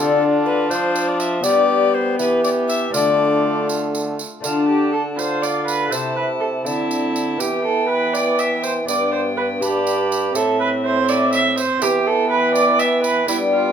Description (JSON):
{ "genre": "classical, renaissance-style consort dance", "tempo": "81 BPM (dotted quarters)", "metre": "6/8", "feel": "straight", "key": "D dorian", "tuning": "A4 = 439 Hz", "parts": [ { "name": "bright alto recorder", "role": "melody", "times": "0.0-13.7 s", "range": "A4 to B5", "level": "-25 LUFS", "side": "left 4 dB", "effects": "none" }, { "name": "rich viola", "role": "second line", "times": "0.0-13.7 s", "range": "E4 to E5", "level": "-21 LUFS", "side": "right 4 dB", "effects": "none" }, { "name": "lute", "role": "accompaniment", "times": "0.0-13.7 s", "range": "G2 to A4", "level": "-23 LUFS", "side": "left 6 dB", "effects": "none" }, { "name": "rich viola", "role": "accompaniment", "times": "0.0-13.7 s", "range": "A3 to F4", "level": "-25 LUFS", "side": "left 2 dB", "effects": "none" }, { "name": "mellow bassoon", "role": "bass", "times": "0.0-13.7 s", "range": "G2 to G3", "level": "-22 LUFS", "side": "right 2 dB", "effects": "none" }, { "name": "tambourine", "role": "percussion", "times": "0.7-13.5 s", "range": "none", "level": "-30 LUFS", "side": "right 7 dB", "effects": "none" } ], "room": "moderate large studio reverb, RT60 1.3 s", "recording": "none", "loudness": "-16 LUFS", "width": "side -8 dB against mid", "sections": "0.0-4.4 A section; 4.4-13.7 B section", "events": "none", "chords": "0.0 Dm; 1.4 G; 2.9 Dm; 5.9 Am/C; 7.4 Em; 8.9 G; 10.3 Am; 11.8 Em", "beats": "0.71 | 1.45 2.19 | 2.94 3.69 | 4.44 5.18 | 5.92 6.66 | 7.40 8.14 | 8.88 9.62 | 10.35 11.08 | 11.81 12.55 | 13.29" }